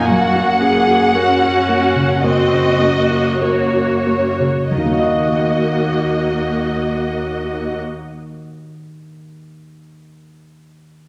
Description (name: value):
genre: cinematic, emotional film score for orchestra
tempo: 45-57 BPM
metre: 4/4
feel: rubato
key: Eb minor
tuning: A4 = 440 Hz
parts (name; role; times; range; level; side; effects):
- rich studio violin section; melody; 0.0-7.8 s; Db5 to Gb5; -22 LUFS; equal; none
- rich studio viola section; accompaniment; 0.0-7.8 s; Bb3 to Ab4; -20 LUFS; equal; none
- warm concert grand piano; accompaniment; 0.0-11.1 s; Eb2 to Eb5; -24 LUFS; equal; none
- concert harp; arpeggios; 0.0-8.6 s; Gb2 to Eb5; -27 LUFS; equal; none
- clear studio cello section; bass; 0.0-7.8 s; Eb2 to Gb2; -30 LUFS; equal; none
room: wet scoring stage reverb, RT60 1.7 s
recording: none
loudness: -16 LUFS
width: mono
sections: 0.0-4.7 A section; 4.7-9.6 B section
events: slowing down 0.0-4.7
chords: 0.1 Gb; 4.7 Ebm